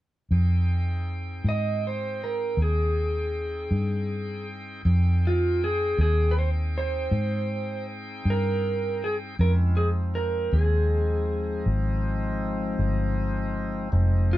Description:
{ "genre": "slow blues", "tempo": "53 BPM (dotted quarters)", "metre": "12/8", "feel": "straight", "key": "F minor", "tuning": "A4 = 443 Hz", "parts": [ { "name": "bright tonewheel organ", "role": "sustained chords", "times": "0.3-14.4 s", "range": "F3 to G5", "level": "-34 LUFS", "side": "left 2 dB", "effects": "slow rotary speaker" }, { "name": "vintage muted fingered electric bass", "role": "bass", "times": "0.3-14.4 s", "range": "F1 to Ab2", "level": "-24 LUFS", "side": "equal", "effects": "none" }, { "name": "clean lap steel guitar", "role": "melody", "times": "1.5-14.4 s", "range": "F4 to Eb5", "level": "-28 LUFS", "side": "right 1 dB", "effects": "none" } ], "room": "moderate studio ambience, RT60 0.5 s", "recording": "band playing live in one room", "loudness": "-23 LUFS", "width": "side -15 dB against mid", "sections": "0.3-4.9 A section; 4.9-14.4 B section", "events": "none", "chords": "0.3 Fm7" }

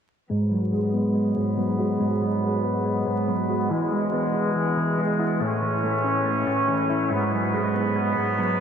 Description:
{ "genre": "hip hop", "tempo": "141 BPM", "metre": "4/4", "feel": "half-time", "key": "G# phrygian", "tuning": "A4 = 439 Hz", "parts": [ { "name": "mellow electric guitar", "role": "accompaniment", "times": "0.3-8.6 s", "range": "G#2 to B3", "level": "-25 LUFS", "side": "right 2 dB", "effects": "ensemble chorus, low-pass filter" }, { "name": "clear brass ensemble", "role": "sustained chords", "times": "0.3-8.6 s", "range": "E2 to C#4", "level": "-26 LUFS", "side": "equal", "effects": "low-pass filter" }, { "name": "soft electric-piano-like synth keys", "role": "arpeggios", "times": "0.3-8.6 s", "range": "E3 to F#4", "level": "-28 LUFS", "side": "left 4 dB", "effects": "chorus, low-pass filter, diffuse ambient delay" } ], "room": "wet huge ambient reverb, RT60 8.3 s", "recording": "dreamy mix soaked in reverb, vinyl crackle", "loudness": "-21 LUFS", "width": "side -8 dB against mid", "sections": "0.3-8.6 A section", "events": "filter sweep 0.3-8.6", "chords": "0.3 G#m7; 3.7 E; 5.4 A; 7.1 G#m7" }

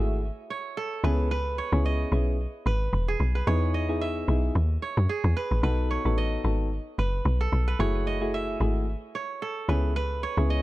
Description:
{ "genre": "afrobeats", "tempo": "111 BPM", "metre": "4/4", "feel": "swing 55% on 16ths", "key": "B mixolydian", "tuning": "A4 = 441 Hz", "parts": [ { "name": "soft electric-piano-like synth keys", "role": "accompaniment", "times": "0.0-10.6 s", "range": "A3 to A4", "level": "-31 LUFS", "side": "left 1 dB", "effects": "chorus" }, { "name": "kora", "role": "riff", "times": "0.0-10.6 s", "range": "G#4 to E5", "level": "-32 LUFS", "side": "right 4 dB", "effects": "tape echo" }, { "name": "woody log drum bass", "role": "bass", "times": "0.0-10.6 s", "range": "E1 to F#2", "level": "-25 LUFS", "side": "equal", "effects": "none" } ], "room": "small room ambience", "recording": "dry, gritty hardware recording", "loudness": "-24 LUFS", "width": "side -17 dB against mid", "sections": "0.0-10.6 A section", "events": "none", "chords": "0.0 F#m9; 1.0 C#m7; 3.5 Emaj7; 5.6 B7; 7.8 F#m9; 9.7 C#m7" }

